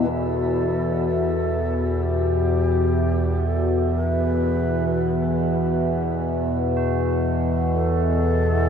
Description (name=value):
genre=dark ambient drone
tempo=63 BPM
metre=4/4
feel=straight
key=E minor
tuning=A4 = 440 Hz
part: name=breathy long shakuhachi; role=melody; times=0.0-8.7 s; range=G4 to B4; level=-30 LUFS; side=left 1 dB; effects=shimmer reverb, ping-pong delay
part: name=deep dark ambient pad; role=sustained chords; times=0.0-8.7 s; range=B3 to E5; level=-30 LUFS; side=left 1 dB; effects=chorus, built-in reverb, shimmer reverb
part: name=tubular bells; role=arpeggios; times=0.0-0.1, 6.8-8.7 s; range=F#4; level=-38 LUFS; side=right 4 dB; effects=shimmer reverb, ping-pong delay
part: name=overtone-sweeping drone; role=drone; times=0.0-8.7 s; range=E2 to B2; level=-20 LUFS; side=equal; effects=chorus, built-in reverb
room=moderate huge ambient reverb, RT60 8.6 s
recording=none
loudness=-20 LUFS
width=side -7 dB against mid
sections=0.1-8.7 A section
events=fade-in on ambient pad 0.1-8.7; fade-in on tubular bells 0.1-8.7; fade-in on shakuhachi 0.1-8.7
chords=0.1 E5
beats=| 0.10 1.06 2.01 2.96 | 3.91 4.87 5.82 6.77 | 7.72 8.68